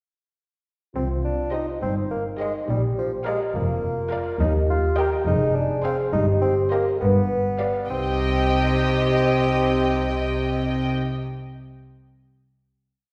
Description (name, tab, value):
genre	cinematic, playful, whimsical film cue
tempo	69 BPM (dotted quarters)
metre	6/8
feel	straight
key	C minor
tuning	A4 = 439 Hz
part	warm studio cello section	bass	0.9-10.9 s	Eb2 to C3	-30 LUFS	equal	none
part	warm bassoon	accompaniment	1.0-10.9 s	F3 to G4	-29 LUFS	equal	none
part	dark French horn section	sustained chords	1.0-10.9 s	Eb4 to B4	-30 LUFS	equal	none
part	rich studio double bass section	bass	1.0-10.9 s	F1 to Eb2	-29 LUFS	equal	none
part	rich studio violin section	melody	1.5-10.9 s	Eb5 to G5	-35 LUFS	equal	none
part	dark chamber violin section	second line	1.5-10.9 s	C5 to Eb5	-32 LUFS	equal	none
part	warm studio viola section	accompaniment	1.5-10.9 s	G4 to Bb4	-34 LUFS	equal	none
room	wet scoring stage reverb, RT60 1.5 s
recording	heard from further back in the room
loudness	-23 LUFS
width	mono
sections	1.0-7.9 A section; 7.9-11.4 final chord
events	none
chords	1.0 Cm; 2.7 Bb; 4.4 Eb; 5.3 Fm; 6.1 Cm/G; 7.0 G7; 7.9 Cm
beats	| 0.95 1.82 | 2.69 3.54 | 4.40 5.26 | 6.13 7.00 | 7.89 8.76 | 9.63 10.50